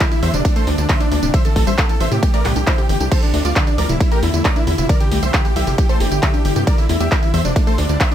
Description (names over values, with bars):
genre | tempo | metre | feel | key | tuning
uplifting trance | 135 BPM | 4/4 | straight | D minor | A4 = 442 Hz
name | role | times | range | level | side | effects
big supersaw lead | melody | 0.0-8.1 s | D4 to E5 | -23 LUFS | equal | sidechain pumping, ping-pong delay
wide unison pluck | second line | 0.0-8.1 s | D4 to E5 | -28 LUFS | equal | none
shimmering ambient pad | sustained chords | 0.0-8.1 s | C3 to E4 | -27 LUFS | equal | chorus, built-in reverb, phaser, sidechain pumping
wide unison pluck | arpeggios | 0.0-8.1 s | A2 to D4 | -24 LUFS | left 2 dB | sidechain pumping
electronic kick drum | drums | 0.0-8.1 s | none | -16 LUFS | equal | overdrive
punchy analog drum machine | drums | 0.0-8.1 s | crash cymbal, handclaps, hi-hat, ride cymbal, tambourine | -24 LUFS | right 1 dB | none
tight sequencer bass | bass | 0.2-8.0 s | D1 to A2 | -20 LUFS | equal | sidechain pumping
room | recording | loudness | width
digital ambience | none | -14 LUFS | side -10 dB against mid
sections
0.0-8.1 A section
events
none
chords
0.4 Dm7; 1.3 Am; 2.2 Cadd9; 3.1 Dm7; 4.0 Em7b5; 4.9 Cadd9; 5.8 Gm7; 6.7 Em7b5; 7.6 Dm7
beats
0.00 0.45 0.89 | 1.34 1.78 2.23 2.67 | 3.12 3.56 4.00 4.45 | 4.89 5.34 5.78 6.23 | 6.67 7.12 7.56 8.00